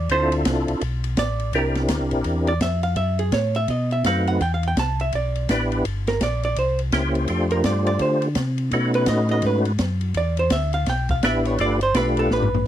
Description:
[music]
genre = soul jazz organ trio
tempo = 167 BPM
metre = 4/4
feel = swing 63% on 8ths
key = C major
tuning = A4 = 440 Hz
[part]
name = vintage hollow-body jazz guitar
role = accompaniment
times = 0.0-12.7 s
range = Ab4 to A5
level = -24 LUFS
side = right 3 dB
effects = none
[part]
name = mellow tonewheel organ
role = bass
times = 0.0-12.7 s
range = G1 to D3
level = -23 LUFS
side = left 1 dB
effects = slow rotary speaker
[part]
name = percussive tonewheel organ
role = melody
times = 0.1-12.5 s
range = A3 to C5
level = -22 LUFS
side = equal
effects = slow rotary speaker, chorus vibrato
[part]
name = open jazz drum kit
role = drums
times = 0.1-12.6 s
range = hi-hat, kick drum, ride cymbal, snare drum, toms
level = -28 LUFS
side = equal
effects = none
[sound]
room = little or no reverb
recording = dry, close 1970s-style studio recording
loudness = -19 LUFS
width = side -11 dB against mid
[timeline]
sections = 0.0-1.5 A section; 1.5-12.7 A section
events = hollow-body jazz guitar solo 0.0-12.7; drum fill 12.3-12.7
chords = 0.1 Dm7; 0.8 Asus24; 1.5 C9; 3.0 F#m; 3.7 B7b9; 4.4 Em7; 5.8 Gm; 6.6 C7b9; 7.3 F69; 8.7 B7; 10.2 Em7; 11.6 G9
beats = | 0.10 0.46 0.82 1.18 | 1.54 1.90 2.26 2.62 | 2.97 3.33 3.69 4.05 | 4.41 4.77 5.13 5.49 | 5.84 6.20 6.56 6.92 | 7.28 7.64 8.00 8.36 | 8.72 9.08 9.44 9.79 | 10.15 10.51 10.87 11.23 | 11.59 11.95 12.31 12.67

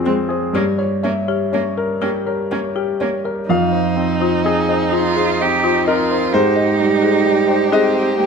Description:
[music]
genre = neoclassical piano and strings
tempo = 40-44 BPM (dotted quarters)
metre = 6/8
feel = rubato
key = F minor from 3.5 s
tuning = A4 = 442 Hz
[part]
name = clear concert grand piano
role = accompaniment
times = 0.0-8.3 s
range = F2 to F5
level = -18 LUFS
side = equal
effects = none
[part]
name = rich cello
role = second line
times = 0.1-8.3 s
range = Ab3 to G4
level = -20 LUFS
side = right 6 dB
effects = none
[part]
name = warm viola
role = accompaniment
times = 0.1-8.3 s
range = C4 to G4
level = -22 LUFS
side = right 2 dB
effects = none
[part]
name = folk marimba with medium mallets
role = arpeggios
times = 0.1-8.3 s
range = F4 to G5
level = -22 LUFS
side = left 8 dB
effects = tape echo
[sound]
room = moderate recital hall reverb, RT60 1.7 s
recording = none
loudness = -15 LUFS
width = side -5 dB against mid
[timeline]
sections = 0.0-3.5 A section; 3.5-8.3 B section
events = none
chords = 0.0 Fm; 0.5 Gdim; 3.5 Fm7; 6.3 Abmaj7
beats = | 0.55 2.03 | 3.50 4.93 | 6.34 7.73

